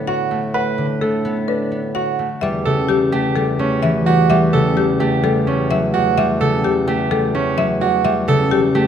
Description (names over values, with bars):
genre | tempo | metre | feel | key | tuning
classical, minimalist pattern music | 128 BPM | 4/4 | straight | E dorian | A4 = 437 Hz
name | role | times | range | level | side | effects
concert harp | accompaniment | 0.0-8.9 s | C#3 to B3 | -18 LUFS | left 1 dB | none
dark bassoon | bass | 0.0-8.9 s | E2 to A2 | -25 LUFS | right 1 dB | none
buzzing marimba with hard mallets | melody | 0.1-8.8 s | G4 to F#5 | -22 LUFS | left 6 dB | none
bright grand piano | arpeggios | 0.1-8.9 s | C#4 to B4 | -20 LUFS | right 7 dB | none
clear clarinet | second line | 2.4-5.9 s | G4 | -30 LUFS | right 2 dB | none
room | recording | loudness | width
moderate scoring stage reverb, RT60 2.1 s | none | -15 LUFS | side -8 dB against mid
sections
0.0-2.4 A section; 2.4-8.9 B section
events
none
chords
0.0 Bm7/A; 2.4 Em69